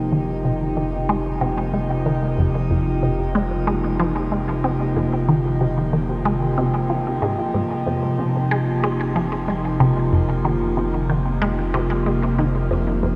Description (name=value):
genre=ambient, sequencer-driven space music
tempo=93 BPM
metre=4/4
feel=straight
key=F minor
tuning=A4 = 440 Hz
part: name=evolving wavetable pad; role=sustained chords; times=0.0-13.2 s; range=C3 to G4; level=-24 LUFS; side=equal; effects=chorus, built-in reverb, shimmer reverb
part: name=round analog bass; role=bass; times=0.0-13.2 s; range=F1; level=-31 LUFS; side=equal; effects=none
part: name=resonant blip pluck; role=riff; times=0.1-13.2 s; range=F2 to C4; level=-25 LUFS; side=equal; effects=phaser, tape echo, shimmer reverb
room=wet cathedral reverb, RT60 6.4 s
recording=in a vast, echoing space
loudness=-21 LUFS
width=mono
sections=0.0-13.2 A section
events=filter sweep on synth arpeggio sound 0.0-13.2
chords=0.0 Fm7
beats=| 0.12 0.77 1.42 2.06 | 2.71 3.35 4.00 4.64 | 5.29 5.93 6.58 7.22 | 7.87 8.51 9.16 9.80 | 10.45 11.09 11.74 12.38 | 13.03